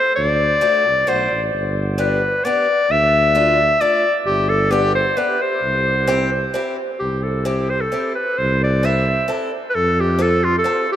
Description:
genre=alpine folk, alpine dance band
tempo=132 BPM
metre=3/4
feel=straight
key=C major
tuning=A4 = 440 Hz
part: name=bright clarinet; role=melody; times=0.0-11.0 s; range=F4 to E5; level=-17 LUFS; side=left 1 dB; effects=none
part: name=mellow tuba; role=bass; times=0.2-10.6 s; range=G1 to F2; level=-21 LUFS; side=right 1 dB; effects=none
part: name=picked old ladder-braced acoustic guitar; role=accompaniment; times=0.6-10.9 s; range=A3 to A4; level=-25 LUFS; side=left 2 dB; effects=none
room=wet cathedral reverb, RT60 6.3 s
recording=in a vast, echoing space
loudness=-15 LUFS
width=side -11 dB against mid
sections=0.0-7.0 A section; 7.0-11.0 A section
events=none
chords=0.2 D; 1.5 G; 2.9 Dm; 4.3 G; 5.6 C; 8.4 Am/C; 9.8 F

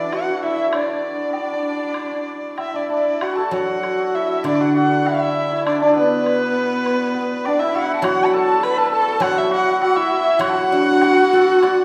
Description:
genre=chinese traditional, Chinese chamber ensemble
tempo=99 BPM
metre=4/4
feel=rubato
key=D gong mode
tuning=A4 = 441 Hz
part: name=warm erhu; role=melody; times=0.0-11.8 s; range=B4 to B5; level=-25 LUFS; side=equal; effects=none
part: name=clear horsehead fiddle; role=second line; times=0.0-11.8 s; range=B3 to B4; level=-24 LUFS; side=equal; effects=none
part: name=hammered dulcimer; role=second line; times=0.0-11.8 s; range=A3 to B4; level=-24 LUFS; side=equal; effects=none
part: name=large dizi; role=second line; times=0.0-11.8 s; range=B4 to B5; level=-28 LUFS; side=equal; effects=none
part: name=guzheng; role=accompaniment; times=0.0-11.8 s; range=D3 to D5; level=-26 LUFS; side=equal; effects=none
part: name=woodblock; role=percussion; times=0.1-11.8 s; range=none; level=-34 LUFS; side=equal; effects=none
room=wet recital hall reverb, RT60 1.6 s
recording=recorded in a church or concert hall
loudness=-18 LUFS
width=mono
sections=0.0-3.2 A section; 3.2-11.8 B section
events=none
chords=none

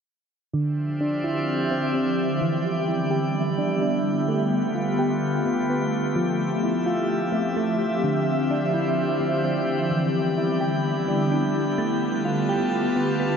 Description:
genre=hip hop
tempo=128 BPM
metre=4/4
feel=half-time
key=D dorian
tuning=A4 = 442 Hz
part: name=ethereal airy pad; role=sustained chords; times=0.9-13.4 s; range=D3 to E5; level=-24 LUFS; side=left 1 dB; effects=ensemble chorus, built-in reverb, low-pass filter
part: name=soft electric-piano-like synth keys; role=arpeggios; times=0.5-13.4 s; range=D3 to G4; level=-26 LUFS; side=right 2 dB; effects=chorus, low-pass filter, tape echo
part: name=drifting glass-harmonics texture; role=texture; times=0.8-13.4 s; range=E4 to A5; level=-31 LUFS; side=equal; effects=chorus, built-in reverb
room=moderate booth ambience, RT60 0.2 s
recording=dark, warm production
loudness=-21 LUFS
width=side -6 dB against mid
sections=0.5-13.4 A section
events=filter sweep 0.5-13.4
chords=0.5 Dm11; 2.4 Em7; 4.3 G9; 6.2 Fmaj9; 8.0 Dm11; 9.9 Em7; 11.8 G9

